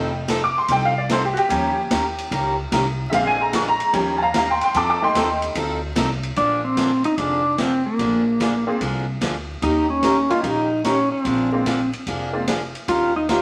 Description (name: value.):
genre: country, western swing.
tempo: 148 BPM.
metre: 4/4.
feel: swing 67% on 8ths.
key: Bb mixolydian.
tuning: A4 = 440 Hz.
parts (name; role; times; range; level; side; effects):
honky-tonk upright piano; accompaniment; 0.0-5.5, 8.7-12.5 s; D3 to D6; -23 LUFS; equal; none.
picked steel-string acoustic guitar; accompaniment; 0.0-13.4 s; D3 to Bb4; -28 LUFS; equal; none.
upright bass; bass; 0.0-13.4 s; F1 to F2; -31 LUFS; equal; none.
swinging big-band drum kit; drums; 0.3-13.4 s; hi-hat, kick drum, ride cymbal, snare drum; -31 LUFS; equal; none.
pedal steel guitar; melody; 6.4-13.4 s; Bb3 to F4; -22 LUFS; equal; none.
room: wet studio reverb, RT60 1.0 s.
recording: vinyl crackle.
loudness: -21 LUFS.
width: mono.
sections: 0.0-6.4 A section; 6.4-13.4 B section.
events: honky-tonk piano solo 0.0-6.4.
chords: 0.0 F9; 1.5 Eb9; 3.1 Bb9; 3.9 Eb9; 4.7 F9; 6.4 Bb9; 9.6 Eb7; 11.3 Bb9; 12.9 Eb9.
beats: 0.29 0.69 1.10 | 1.50 1.91 2.31 2.72 | 3.13 3.53 3.94 4.34 | 4.75 5.15 5.56 5.96 | 6.37 6.78 7.18 7.59 | 8.00 8.40 8.81 9.22 | 9.62 10.03 10.44 10.85 | 11.25 11.66 12.07 12.47 | 12.88 13.29.